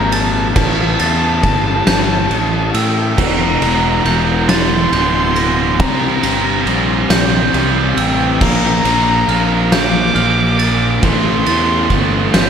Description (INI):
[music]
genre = post-rock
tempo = 46 BPM (dotted quarters)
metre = 6/8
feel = straight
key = unclear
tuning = A4 = 440 Hz
[part]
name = muted violin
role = melody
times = 0.0-12.3 s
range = G5 to D6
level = -19 LUFS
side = equal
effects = slapback echo, tape echo
[part]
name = glockenspiel with hard plastic mallets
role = arpeggios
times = 0.0-12.5 s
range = E6 to Bb6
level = -24 LUFS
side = right 4 dB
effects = tape echo
[part]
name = raw garage guitar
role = riff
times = 0.0-12.5 s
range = E2 to C4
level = -20 LUFS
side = left 10 dB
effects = overdrive, slapback echo
[part]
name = fuzz fingered electric bass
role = bass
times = 0.0-12.5 s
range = D1 to A2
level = -18 LUFS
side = equal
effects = overdrive
[part]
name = oversized low-tuned drum kit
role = drums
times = 0.1-12.5 s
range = crash cymbal, kick drum, ride cymbal, snare drum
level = -17 LUFS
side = right 1 dB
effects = none
[part]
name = biting overdriven guitar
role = riff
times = 3.2-12.5 s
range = E2 to C4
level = -19 LUFS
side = right 10 dB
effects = slapback echo
[sound]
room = moderate scoring stage reverb, RT60 1.9 s, small room ambience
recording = big arena sound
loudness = -12 LUFS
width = side -7 dB against mid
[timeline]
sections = 0.0-12.5 A section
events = none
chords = 0.0 Bb5; 0.6 A5; 3.2 Edim; 5.8 C7; 8.4 Bb; 11.0 Am7